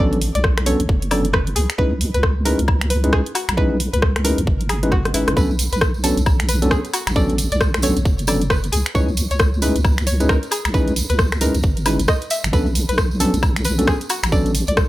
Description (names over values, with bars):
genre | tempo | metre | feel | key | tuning
UK garage, two-step garage | 134 BPM | 4/4 | swing 61% on 16ths | B dorian | A4 = 439 Hz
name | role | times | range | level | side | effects
string-like resonator pluck | melody | 0.0-14.9 s | E4 to E5 | -27 LUFS | equal | chorus, cassette tape, digital delay
tine electric piano | stabs | 0.0-14.5 s | F#3 to B4 | -22 LUFS | equal | none
deep soft wobble bass | bass | 0.0-14.9 s | F#1 to C#2 | -20 LUFS | equal | chorus
garage drum kit | drums | 0.1-14.9 s | finger snaps, hi-hat, rim click, woodblock | -22 LUFS | left 1 dB | small room ambience
electronic kick drum | drums | 0.4-14.9 s | none | -18 LUFS | equal | small room ambience
tambourine | percussion | 5.4-14.9 s | none | -30 LUFS | right 5 dB | none
room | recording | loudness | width
little or no reverb | none | -16 LUFS | side -16 dB against mid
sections
0.0-14.9 A section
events
drum fill 4.9-5.4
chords
0.0 Bm9; 1.6 C#m9; 5.4 Bm9; 8.7 C#m9; 12.5 Bm9